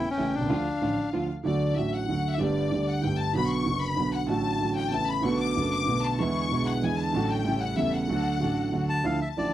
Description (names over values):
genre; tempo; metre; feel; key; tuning
tango; 190 BPM; 3/4; rubato; D major; A4 = 441 Hz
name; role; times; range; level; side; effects
bandoneon; melody; 0.0-1.1, 8.9-9.5 s; C#4 to A5; -29 LUFS; left 2 dB; none
bright studio violin section; second line; 0.0-9.5 s; D5 to D6; -31 LUFS; left 6 dB; none
warm concert grand piano; accompaniment; 0.2-9.5 s; E1 to G4; -26 LUFS; right 2 dB; none
rich chamber string section; stabs; 0.2-1.3, 5.3-9.0 s; A3 to A4; -38 LUFS; equal; none
room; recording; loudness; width
moderate studio reverb, RT60 0.6 s; dry, close 1970s-style studio recording; -24 LUFS; side -12 dB against mid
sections
0.0-1.5 A section; 1.5-9.1 B section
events
violin section solo 1.5-9.1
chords
0.0 A; 0.5 Dm; 1.5 D; 2.4 Gsus2; 3.4 Bm; 4.3 D/A; 4.9 Aadd9; 5.2 Bm7; 6.2 E7; 7.1 D/A; 7.5 A7; 8.1 D